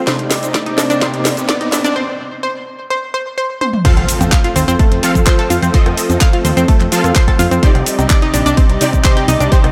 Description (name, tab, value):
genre	progressive house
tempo	127 BPM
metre	4/4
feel	straight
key	unclear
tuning	A4 = 440 Hz
part	lush unison pad	sustained chords	0.0-9.7 s	C3 to D5	-24 LUFS	equal	chorus, sidechain pumping
part	analog pluck	arpeggios	0.0-9.6 s	A3 to F6	-21 LUFS	equal	chorus, sidechain pumping, tape echo
part	supersaw stab	stabs	0.0-9.7 s	C3 to F5	-23 LUFS	equal	ensemble chorus, sidechain pumping, low-pass filter, tape echo
part	plucky analog bass	bass	0.0-9.7 s	Bb1 to F2	-20 LUFS	equal	sidechain pumping, high-pass filter
part	riser and impact	sound effects	0.0-5.7 s	none	-27 LUFS	equal	none
part	electronic kick drum	drums	0.1-9.6 s	none	-14 LUFS	equal	high-pass filter on kick, high-pass filter on room
part	house drum kit	drums	0.1-9.7 s	crash cymbal, handclaps, hi-hat, shaker, snare drum, toms	-21 LUFS	equal	none
part	dusty soul sampler-style drum kit	drums	3.8-9.6 s	hi-hat, ride cymbal, snare drum	-33 LUFS	equal	none
part	electronic cowbell, congas and rim click	percussion	4.0-9.7 s	none	-26 LUFS	equal	sidechain pumping on perc, sidechain pumping on snare
room	light reverb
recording	none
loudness	-14 LUFS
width	mono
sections	0.0-3.8 A section; 3.8-9.7 B section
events	build-up 0.0-3.8; drum fill 0.0-2.0, 3.6; riser 0.0-2.0; filter sweep on supersaw synth 0.0-3.8; break 2.0-3.8; drop 3.8-9.7; impact 3.8-5.7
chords	0.1 Cmadd9; 3.8 F; 7.6 Cmadd9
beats	| 0.07 0.54 1.01 1.49 | 1.96 2.43 2.90 3.38 | 3.85 4.32 4.79 5.27 | 5.74 6.21 6.68 7.16 | 7.63 8.10 8.57 9.05 | 9.52